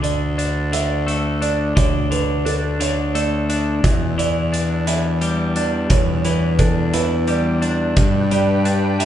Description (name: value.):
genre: post-rock.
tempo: 58 BPM (dotted quarters).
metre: 6/8.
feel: straight.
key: unclear.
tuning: A4 = 440 Hz.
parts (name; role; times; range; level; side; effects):
felt-muted upright piano; arpeggios; 0.0-9.1 s; A4 to E5; -25 LUFS; right 4 dB; none.
twelve-string electric guitar; arpeggios; 0.0-9.1 s; E2 to D4; -21 LUFS; left 2 dB; none.
fuzz fingered electric bass; bass; 0.0-9.1 s; D2 to G2; -22 LUFS; equal; overdrive.
huge arena drum kit; drums; 0.0-9.1 s; hi-hat, kick drum; -21 LUFS; right 1 dB; none.
soft additive organ-like pad; sustained chords; 8.0-9.1 s; D4 to G5; -24 LUFS; left 1 dB; ensemble chorus, built-in reverb.
room: wet recital hall reverb, RT60 1.6 s.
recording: recorded in a church or concert hall, nothing above 10.8 kHz.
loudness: -16 LUFS.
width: side -10 dB against mid.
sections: 0.0-9.1 A section.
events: none.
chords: 0.0 Dsus2; 3.8 Em7; 8.0 G.